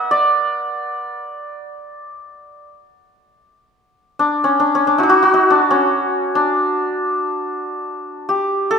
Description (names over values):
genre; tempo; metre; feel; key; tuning
persian; 70 BPM; 4/4; straight; D dastgah chahargah; A4 = 442 Hz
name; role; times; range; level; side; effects
santur; solo; 0.0-8.8 s; C#4 to F#5; -15 LUFS; equal; none
room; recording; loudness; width
wet scoring stage reverb, RT60 2.0 s; minimal, uncompressed stereo recording; -14 LUFS; side -6 dB against mid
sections
0.0-3.5 A section; 3.5-8.8 B section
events
none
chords
none